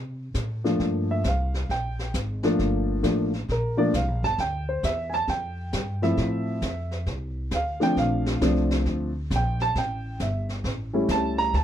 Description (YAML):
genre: jazz piano trio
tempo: 134 BPM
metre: 4/4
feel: swing 65% on 8ths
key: D minor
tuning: A4 = 440 Hz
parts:
  - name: upright bass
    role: bass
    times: 0.0-11.6 s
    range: G1 to C3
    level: -28 LUFS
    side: equal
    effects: none
  - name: jazz brush drum kit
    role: drums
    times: 0.3-11.6 s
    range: brushed snare drum, hi-hat, kick drum, snare drum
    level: -33 LUFS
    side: equal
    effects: none
  - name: dark baby grand piano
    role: melody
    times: 0.6-11.6 s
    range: F3 to Bb5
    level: -25 LUFS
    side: equal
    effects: none
room: little or no reverb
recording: none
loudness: -23 LUFS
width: side -10 dB against mid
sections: 0.0-11.6 A section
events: grand piano solo 0.0-11.6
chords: 0.0 D7(no3) (rootless); 0.8 Gm7; 4.4 Dm7; 8.0 Bbmaj7; 9.8 A7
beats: 0.35 | 0.80 1.25 1.70 2.14 | 2.59 3.04 3.49 3.94 | 4.38 4.83 5.28 5.73 | 6.17 6.62 7.07 7.52 | 7.96 8.41 8.86 9.30 | 9.75 10.20 10.64 11.09 | 11.54